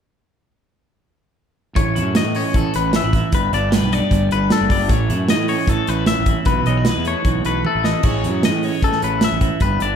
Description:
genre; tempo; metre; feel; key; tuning
math rock and midwest emo; 153 BPM; 4/4; straight; unclear; A4 = 440 Hz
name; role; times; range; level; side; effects
twelve-string electric guitar; accompaniment; 1.8-10.0 s; G2 to G#4; -22 LUFS; right 5 dB; none
twangy electric guitar; arpeggios; 1.8-10.0 s; A4 to E5; -22 LUFS; left 8 dB; spring reverb, slapback echo
fuzz fingered electric bass; bass; 1.8-10.0 s; F#1 to A2; -22 LUFS; equal; overdrive
modern studio drum kit; drums; 1.8-9.9 s; crash cymbal, hi-hat, kick drum, snare drum, toms; -20 LUFS; equal; none
room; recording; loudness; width
moderate recital hall reverb, RT60 1.3 s, studio reverb; big arena sound; -15 LUFS; side -8 dB against mid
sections
1.8-10.0 A section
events
drum fill 7.6-8.0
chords
1.8 Aadd9; 3.3 Gmaj9; 4.9 A; 6.5 B7sus4; 8.0 Amaj7

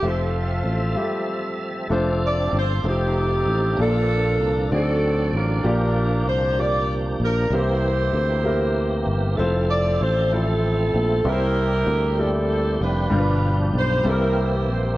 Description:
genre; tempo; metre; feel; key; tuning
slow gospel; 64 BPM (dotted quarters); 6/8; straight; F major; A4 = 439 Hz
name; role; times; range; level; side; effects
warm horn section; melody; 0.0-15.0 s; A3 to D5; -24 LUFS; right 1 dB; tape echo
warm upright piano; accompaniment; 0.0-15.0 s; G2 to E5; -26 LUFS; left 1 dB; none
tonewheel organ; sustained chords; 0.0-15.0 s; B2 to E5; -28 LUFS; right 1 dB; slow rotary speaker, chorus vibrato
fingered electric bass; bass; 0.0-15.0 s; F1 to D2; -22 LUFS; equal; none
room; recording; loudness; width
light reverb; worn, warbling old tape, cassette tape, warbly pitch drift; -19 LUFS; side -16 dB against mid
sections
0.0-1.9 A section; 1.9-15.0 B section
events
break 1.0-1.9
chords
0.0 Fmaj7; 1.9 F6; 2.8 F7; 3.8 Bbmaj7; 4.7 D7b9; 5.7 Gm7/Bb; 7.5 C7; 9.4 Fmaj7; 11.3 C7; 13.1 G7; 14.0 C7

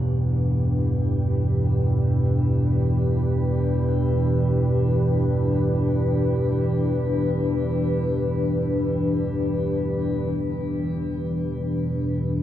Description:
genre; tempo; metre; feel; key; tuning
dark ambient drone; free time; none; none; unclear; A4 = 440 Hz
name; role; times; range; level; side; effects
dark analog pad; sustained chords; 0.0-12.4 s; E3 to B4; -24 LUFS; left 2 dB; chorus, shimmer reverb
quartz singing bowl; arpeggios; 0.0-5.3 s; G2 to D4; -32 LUFS; right 1 dB; none
deep rumbling drone; drone; 0.0-12.4 s; E2 to B2; -23 LUFS; right 1 dB; built-in reverb
room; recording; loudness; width
wet cathedral reverb, RT60 5.4 s; dark, warm production; -20 LUFS; side -12 dB against mid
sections
0.0-10.3 A section; 10.3-12.4 B section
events
fade-in on analog synth pad 0.0-10.3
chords
0.0 G6/E

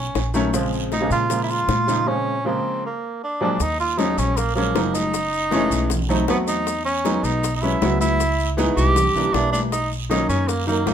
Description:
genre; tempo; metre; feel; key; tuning
Afro-Cuban jazz; 157 BPM; 4/4; straight; Bb minor, Eb minor from 3.6 s; A4 = 440 Hz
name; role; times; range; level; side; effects
breathy tenor saxophone; melody; 0.0-10.9 s; A#3 to G4; -22 LUFS; right 2 dB; none
upright bass; bass; 0.0-10.9 s; Gb1 to Bb2; -25 LUFS; equal; none
bongos; percussion; 0.2-10.9 s; none; -30 LUFS; left 8 dB; none
congas; percussion; 0.2-10.9 s; none; -30 LUFS; left 3 dB; none
guiro; percussion; 0.2-10.9 s; none; -35 LUFS; right 8 dB; none
maracas; percussion; 0.2-10.9 s; none; -35 LUFS; left 9 dB; none
clear baby grand piano; accompaniment; 0.3-10.9 s; Bb2 to F#4; -23 LUFS; equal; none
room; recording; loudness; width
light reverb; minimal, uncompressed stereo recording; -18 LUFS; side -9 dB against mid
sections
0.0-3.6 A section; 3.6-10.9 B section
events
break 2.1-3.6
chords
0.0 B9; 0.5 Bbm7; 2.8 Bb7b13; 3.6 Ebm11; 5.1 Gbm7; 5.9 B7b9; 6.7 Emaj9; 8.2 Dbm7; 9.0 C9; 9.7 Bmaj9

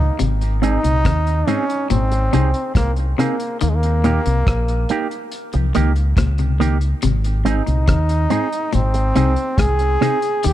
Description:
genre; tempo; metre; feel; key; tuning
roots reggae; 70 BPM; 4/4; straight; Ab major; A4 = 442 Hz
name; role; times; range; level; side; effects
brilliant trombone; melody; 0.0-10.5 s; Ab3 to Ab4; -22 LUFS; equal; tape echo
deep dub fingered electric bass; bass; 0.0-10.5 s; Ab1 to Eb2; -18 LUFS; equal; none
clean electric guitar; arpeggios; 0.2-10.5 s; Ab2 to F3; -24 LUFS; left 8 dB; tremolo
cloth-damped thuddy drum kit; drums; 0.2-10.5 s; hi-hat, kick drum, rim click; -21 LUFS; equal; none
electric guitar with an envelope filter; accompaniment; 0.6-10.2 s; Bb3 to Ab4; -24 LUFS; right 7 dB; tape echo
room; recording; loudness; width
light reverb, studio ambience; dark, warm production; -16 LUFS; side -13 dB against mid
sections
0.2-10.5 A section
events
drum fill 0.0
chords
0.2 Ab; 3.6 Eb; 7.0 Ab

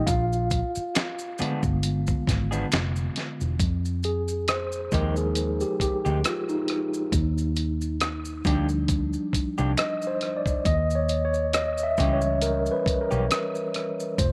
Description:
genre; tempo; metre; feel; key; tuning
R&B, neo-soul; 68 BPM; 4/4; swing 55% on 16ths; unclear; A4 = 442 Hz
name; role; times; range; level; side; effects
mellow tine electric piano; accompaniment; 0.0-14.3 s; D3 to F5; -29 LUFS; equal; none
vintage muted fingered electric bass; bass; 0.0-14.3 s; E1 to F2; -29 LUFS; equal; tube saturation
dusty soul sampler-style drum kit; drums; 0.1-14.3 s; hi-hat, kick drum, rim click, snare drum; -30 LUFS; equal; none
maracas and finger snaps; percussion; 0.1-14.3 s; none; -42 LUFS; equal; none
electric guitar through a small old amp; second line; 0.9-13.2 s; Eb3 to Ab4; -37 LUFS; equal; none
room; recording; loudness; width
light reverb; none; -26 LUFS; mono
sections
0.0-3.6 A section; 3.6-14.3 B section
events
tine electric piano solo 0.0-3.6, 3.6-14.3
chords
0.1 Bb7b9; 3.6 Fm9; 7.1 Ebmaj9; 10.7 Eb7b9

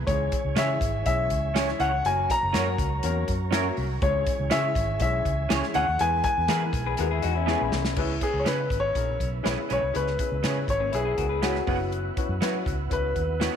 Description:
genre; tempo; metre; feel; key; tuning
uptempo 1960s-style soul; 122 BPM; 4/4; straight; C# dorian; A4 = 440 Hz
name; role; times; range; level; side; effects
tonewheel organ; sustained chords; 0.0-13.6 s; C#3 to A#4; -38 LUFS; right 14 dB; chorus vibrato, wide subtle chorus
vintage muted fingered electric bass; bass; 0.0-13.5 s; F#1 to F#3; -29 LUFS; equal; none
clear baby grand piano; melody; 0.1-13.6 s; E4 to A#5; -27 LUFS; left 2 dB; none
clear upright piano; accompaniment; 0.1-13.6 s; G#3 to E5; -33 LUFS; left 12 dB; none
natural country drum kit; drums; 0.1-13.5 s; crash cymbal, hi-hat, kick drum, snare drum; -30 LUFS; equal; none
electric guitar through a small old amp; stabs; 0.6-13.5 s; G#3 to C#5; -32 LUFS; right 10 dB; ensemble chorus
electric guitar through a small old amp; riff; 6.9-11.7 s; A#3 to B4; -32 LUFS; left 13 dB; none
room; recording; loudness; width
light reverb, studio reverb; 1960s-style stereo with parts hard left and right; -23 LUFS; side -8 dB against mid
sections
0.0-8.0 A section; 8.0-13.6 B section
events
drum fill 7.5-8.0; grand piano solo 8.0-13.6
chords
0.1 C#m; 2.0 F#; 4.0 C#m; 6.0 E; 8.0 C#m7; 11.7 F#7sus4

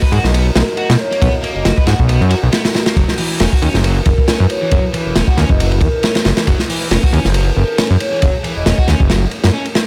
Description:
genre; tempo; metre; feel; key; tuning
breakbeat, breaks; 137 BPM; 4/4; swing 55% on 16ths; F# mixolydian; A4 = 440 Hz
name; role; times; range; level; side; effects
deep dark ambient pad; sustained chords; 0.0-9.9 s; E4 to A#5; -30 LUFS; equal; none
overdriven semi-hollow guitar; riff; 0.0-9.6 s; E3 to B4; -26 LUFS; equal; none
crunchy breakbeat drum kit; drums; 0.0-9.9 s; hi-hat, kick drum, ride cymbal, snare drum; -17 LUFS; equal; none
fat analog bass; bass; 0.1-9.5 s; E1 to B2; -16 LUFS; equal; none
vibraphone with soft mallets; melody; 0.6-8.7 s; A#4 to D#5; -25 LUFS; equal; telephone sound, delay
room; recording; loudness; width
studio ambience; none; -14 LUFS; mono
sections
0.0-9.9 A section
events
kick drops out 9.1-9.9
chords
0.0 Bmaj7; 3.0 F#7sus4

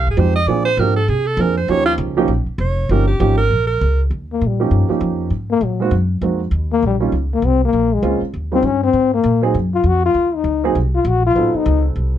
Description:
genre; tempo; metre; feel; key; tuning
jazz, small-group swing and bop; 198 BPM; 4/4; swing 60% on 8ths; Eb mixolydian; A4 = 436 Hz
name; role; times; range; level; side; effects
clear alto saxophone; second line; 0.0-4.0 s; F4 to Eb5; -19 LUFS; right 4 dB; none
upright bass; bass; 0.0-12.2 s; F1 to C3; -18 LUFS; equal; none
dark baby grand piano; accompaniment; 0.2-12.2 s; F3 to A4; -19 LUFS; right 6 dB; none
breathy trombone; melody; 4.3-11.9 s; Gb3 to Gb4; -16 LUFS; left 6 dB; none
room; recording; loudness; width
little or no reverb; dark, warm production; -14 LUFS; side -10 dB against mid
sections
0.0-4.1 A section; 4.1-12.2 A section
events
alto saxophone solo 0.0-4.1; trombone solo 4.1-12.2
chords
0.5 Bb9; 1.7 Eb9; 5.3 Ab9; 6.5 Eb7(no3); 7.7 Bbm7; 8.3 Eb9; 8.9 Ab9; 11.4 Adim7

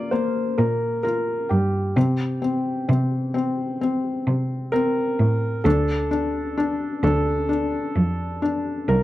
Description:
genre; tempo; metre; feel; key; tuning
pop ballad; 65 BPM; 4/4; straight; unclear; A4 = 437 Hz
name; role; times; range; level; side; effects
warm concert grand piano; melody; 0.0-9.0 s; G4 to D5; -26 LUFS; right 1 dB; none
felt-muted upright piano; accompaniment; 0.0-9.0 s; Bb3 to F4; -25 LUFS; left 3 dB; none
warm cello; bass; 0.0-9.0 s; C2 to C3; -23 LUFS; right 1 dB; none
room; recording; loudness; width
small room reverb; dry, close 1970s-style studio recording; -20 LUFS; side -15 dB against mid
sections
0.0-9.0 A section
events
none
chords
0.0 Bb5; 2.0 C5; 5.7 Dm

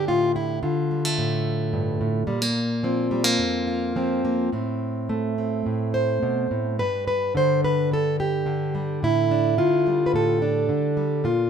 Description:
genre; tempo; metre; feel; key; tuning
folk, solo fingerstyle acoustic guitar; 108 BPM; 4/4; straight; unclear; A4 = 440 Hz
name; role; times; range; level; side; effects
fingerpicked plugged-in steel-string acoustic guitar; solo; 0.0-11.5 s; F2 to C5; -21 LUFS; equal; none
room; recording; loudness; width
light reverb; minimal, uncompressed stereo recording; -21 LUFS; side -7 dB against mid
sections
0.0-11.5 A section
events
none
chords
0.1 Dm/A; 2.3 Bbsus2; 4.5 Amadd9; 6.8 G; 9.0 Dm/A

